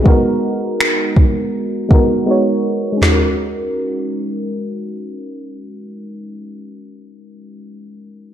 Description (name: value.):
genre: contemporary R&B.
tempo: 81 BPM.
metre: 4/4.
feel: swing 54% on 16ths.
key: F# major.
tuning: A4 = 440 Hz.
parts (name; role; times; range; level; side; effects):
FM electric piano; accompaniment; 0.0-8.3 s; G#3 to C#5; -18 LUFS; equal; chorus, low-pass filter.
smooth R&B drum kit; drums; 0.1-3.2 s; finger snaps, kick drum, snare drum, toms; -13 LUFS; equal; none.
room: light reverb, digital ambience.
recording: dark, warm production.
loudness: -14 LUFS.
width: side -10 dB against mid.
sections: 0.0-3.0 A section; 3.0-6.0 B section.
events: filter sweep on FM electric piano 0.0-3.0; silent gap 2.3-3.0.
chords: 0.1 G#m9; 3.0 F#69.